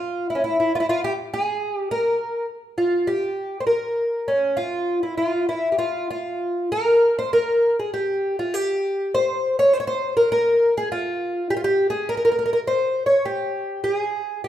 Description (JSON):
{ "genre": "fado", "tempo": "101 BPM", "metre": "4/4", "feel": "rubato", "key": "F harmonic minor", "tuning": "A4 = 440 Hz", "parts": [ { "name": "fingerpicked twelve-string acoustic guitar", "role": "solo", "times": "0.0-14.5 s", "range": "Db4 to Db5", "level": "-20 LUFS", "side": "equal", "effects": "none" } ], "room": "wet recital hall reverb, RT60 1.4 s", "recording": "minimal, uncompressed stereo recording", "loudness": "-19 LUFS", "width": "side -11 dB against mid", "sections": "0.0-14.5 A section", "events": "none", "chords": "none" }